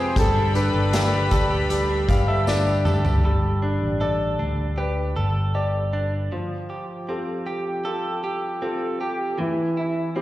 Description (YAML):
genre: pop ballad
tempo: 78 BPM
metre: 4/4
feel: straight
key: unclear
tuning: A4 = 442 Hz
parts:
  - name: warm flugelhorn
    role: melody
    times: 0.0-2.8, 7.5-10.2 s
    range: E4 to B4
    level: -28 LUFS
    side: equal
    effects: slapback echo, digital delay
  - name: clear grand piano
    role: accompaniment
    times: 0.0-10.2 s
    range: E3 to F5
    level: -27 LUFS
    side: left 2 dB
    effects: slapback echo
  - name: rich studio string section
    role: sustained chords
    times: 0.0-3.2 s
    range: Ab3 to B5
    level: -30 LUFS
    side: left 2 dB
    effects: none
  - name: direct-recorded clean electric guitar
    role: arpeggios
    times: 0.0-10.2 s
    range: E3 to C5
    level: -28 LUFS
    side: right 3 dB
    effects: vibrato effect, slapback echo
  - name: fingered electric bass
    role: bass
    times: 0.2-6.3 s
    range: G1 to D2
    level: -23 LUFS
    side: equal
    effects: none
  - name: unplugged drum kit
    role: drums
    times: 0.2-3.2 s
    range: hi-hat, kick drum, snare drum, toms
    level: -24 LUFS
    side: equal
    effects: none
  - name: tambourine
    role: percussion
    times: 0.2-3.2 s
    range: none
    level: -41 LUFS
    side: equal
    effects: none
room: little or no reverb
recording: live gig heard through the venue's PA, recital hall reverb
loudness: -20 LUFS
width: side -15 dB against mid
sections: 0.0-3.2 A section; 3.2-6.3 B section; 6.3-10.2 C section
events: grand piano fill 1.7-3.2; drum fill 2.5-3.2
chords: 0.2 Gadd9; 6.3 Fadd9; 9.4 C/E